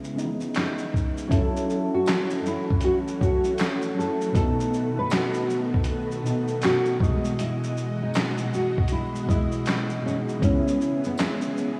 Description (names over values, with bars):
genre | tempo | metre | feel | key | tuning
lo-fi hip hop | 79 BPM | 4/4 | swing 63% on 16ths | F# dorian | A4 = 442 Hz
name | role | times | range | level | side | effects
soft electric-piano-like synth keys | accompaniment | 0.0-11.8 s | B2 to D#5 | -30 LUFS | equal | chorus, phaser, cassette tape, low-pass filter
lo-fi sampler-style drum kit | drums | 0.0-11.8 s | handclaps, hi-hat, kick drum, shaker, snare drum | -29 LUFS | equal | none
nylon-string guitar | melody | 0.6-11.8 s | B3 to B4 | -30 LUFS | equal | analog chorus, low-pass filter, diffuse ambient delay
string machine, full ensemble | sustained chords | 1.3-11.8 s | B2 to D#5 | -36 LUFS | equal | ensemble chorus, low-pass filter
tambourine | percussion | 2.1-11.4 s | none | -54 LUFS | equal | none
room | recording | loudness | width
wet lush hall reverb, RT60 3.1 s | dreamy mix soaked in reverb, studio reverb | -25 LUFS | mono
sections
0.0-1.3 A section; 1.3-11.8 A section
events
none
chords
0.0 C#m7; 1.3 F#m7; 4.3 B7; 7.0 Emaj9/B; 10.4 C#m7